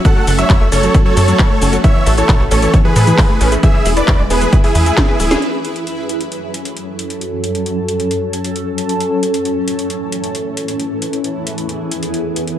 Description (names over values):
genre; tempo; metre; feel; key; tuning
uplifting trance; 134 BPM; 4/4; straight; F# minor; A4 = 440 Hz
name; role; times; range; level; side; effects
shimmering ambient pad; sustained chords; 0.0-12.6 s; E2 to B4; -20 LUFS; equal; chorus, built-in reverb, phaser, sidechain pumping
wide unison pluck; arpeggios; 0.0-5.4 s; E3 to B4; -20 LUFS; left 2 dB; sidechain pumping, dub echo
electronic kick drum; drums; 0.0-5.1 s; none; -12 LUFS; equal; none
dense compressed supersaw; melody; 0.1-5.3 s; E4 to F#5; -17 LUFS; right 1 dB; cassette tape, sidechain pumping, digital delay
techno drum kit; drums; 0.1-12.6 s; handclaps, hi-hat, shaker, snare drum; -21 LUFS; equal; sidechain pumping on hats, sidechain pumping on perc
tight sequencer bass; bass; 0.3-5.4 s; D1 to A2; -15 LUFS; equal; sidechain pumping
room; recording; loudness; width
light reverb; none; -12 LUFS; side -11 dB against mid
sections
0.0-5.4 A section; 5.4-12.6 B section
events
drop 0.0-5.4; drum fill 5.0-5.4; band accent 5.3; filter sweep on ambient pad 5.4-12.6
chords
0.0 F#m; 1.8 A; 3.6 E; 5.4 F#m; 9.0 A; 10.8 E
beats
| 0.05 0.50 0.94 1.39 | 1.84 2.29 2.74 3.18 | 3.63 4.08 4.53 4.97 | 5.42 5.87 6.32 6.77 | 7.21 7.66 8.11 8.56 | 9.01 9.45 9.90 10.35 | 10.80 11.24 11.69 12.14